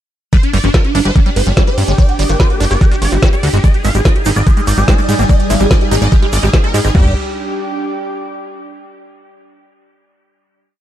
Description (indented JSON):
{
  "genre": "psychedelic trance",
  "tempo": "145 BPM",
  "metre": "4/4",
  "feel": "straight",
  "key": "unclear",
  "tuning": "A4 = 437 Hz",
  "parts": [
    { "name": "swarming rave lead", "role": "melody", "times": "0.3-7.1 s", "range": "D4 to F5", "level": "-20 LUFS", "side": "equal", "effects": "chorus, phaser, sidechain pumping, dub echo" },
    { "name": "liquid acid bass", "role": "riff", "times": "0.3-7.1 s", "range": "F3 to G4", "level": "-22 LUFS", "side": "right 1 dB", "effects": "phaser, auto-pan, sidechain pumping, dub echo" },
    { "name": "garage drum kit", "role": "drums", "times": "0.3-7.0 s", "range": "crash cymbal, kick drum, toms", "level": "-11 LUFS", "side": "equal", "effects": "overdrive, studio reverb" },
    { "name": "garage drum kit", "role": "drums", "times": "0.3-6.9 s", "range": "hi-hat, ride cymbal, snare drum", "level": "-22 LUFS", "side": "right 1 dB", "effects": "overdrive, studio reverb" },
    { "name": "airy breathy pad", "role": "texture", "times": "1.0-8.6 s", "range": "D4 to Eb6", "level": "-24 LUFS", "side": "right 2 dB", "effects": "chorus, sidechain pumping" },
    { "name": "fat analog bass", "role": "bass", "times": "0.5-7.1 s", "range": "G1 to Ab2", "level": "-14 LUFS", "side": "equal", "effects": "none" },
    { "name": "vowel-sweep wobble bass", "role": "second line", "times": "1.7-3.3 s", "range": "F3 to C4", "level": "-29 LUFS", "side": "left 3 dB", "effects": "none" },
    { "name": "overtone-sweeping drone", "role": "sustained chords", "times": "4.3-7.0 s", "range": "G3", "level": "-23 LUFS", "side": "right 1 dB", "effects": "chorus, built-in reverb, phaser, sidechain pumping" },
    { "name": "egg shaker", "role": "percussion", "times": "3.6-6.9 s", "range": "none", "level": "-30 LUFS", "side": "right 2 dB", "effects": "none" }
  ],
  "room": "digital ambience",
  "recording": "dark, warm production",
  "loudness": "-10 LUFS",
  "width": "side -12 dB against mid",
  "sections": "0.3-6.9 drop; 6.9-8.6 final chord",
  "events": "drop 0.3-6.9",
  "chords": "0.3 G5; 3.6 Ab5; 6.9 G5",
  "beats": "| 0.33 0.74 1.16 1.57 | 1.98 2.40 2.81 3.23 | 3.64 4.05 4.47 4.88 | 5.29 5.71 6.12 6.54 | 6.95 7.36 7.78 8.19"
}